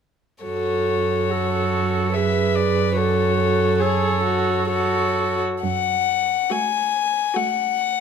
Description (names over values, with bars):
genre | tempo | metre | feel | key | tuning
classical, slow romantic movement for string quartet | 61-75 BPM | 3/4 | rubato | F# minor | A4 = 440 Hz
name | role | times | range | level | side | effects
warm violin | melody | 0.4-8.0 s | C#5 to G#5 | -22 LUFS | left 9 dB | none
dark violin | second line | 0.4-8.0 s | F#4 to B4 | -24 LUFS | left 2 dB | none
warm viola | accompaniment | 0.4-8.0 s | A3 to A4 | -25 LUFS | right 6 dB | none
dark cello | bass | 0.4-6.3 s | F#2 | -24 LUFS | right 6 dB | none
room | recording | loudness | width
moderate recital hall reverb, RT60 1.4 s | none | -18 LUFS | side -6 dB against mid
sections
0.4-5.6 A section; 5.6-8.0 B section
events
none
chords
0.4 F#m